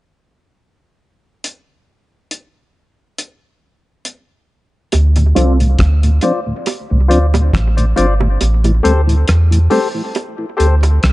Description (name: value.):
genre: dub reggae.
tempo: 69 BPM.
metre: 4/4.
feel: swing 55% on 16ths.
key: D minor.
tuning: A4 = 440 Hz.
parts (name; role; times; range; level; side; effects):
cloth-damped thuddy drum kit; drums; 1.4-11.1 s; hi-hat, kick drum, rim click; -20 LUFS; equal; none.
soft dub sub bass; bass; 4.9-11.1 s; G1 to E2; -11 LUFS; equal; none.
bongos; percussion; 4.9-11.0 s; none; -24 LUFS; right 6 dB; high-pass filter on perc, dub echo.
mellow tonewheel organ; accompaniment; 5.2-10.9 s; D2 to D4; -20 LUFS; left 1 dB; slow rotary speaker, high-pass filter, low-pass filter, dub echo.
electric guitar with an envelope filter; accompaniment; 5.4-5.6 s; C4 to A4; -18 LUFS; right 4 dB; ensemble chorus, high-pass filter, low-pass filter, dub echo.
percussive organ stab; stabs; 5.4-10.8 s; F4 to D5; -21 LUFS; left 4 dB; chorus, high-pass filter, low-pass filter, dub echo.
room: studio ambience.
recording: dark, warm production, nothing above 10.4 kHz.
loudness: -11 LUFS.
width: side -18 dB against mid.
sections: 1.4-4.9 A section; 4.9-11.1 B section.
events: filter sweep 4.9-11.1; kick muted 8.4-11.1.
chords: 1.4 N.C.; 4.9 Dm7; 8.4 Am7.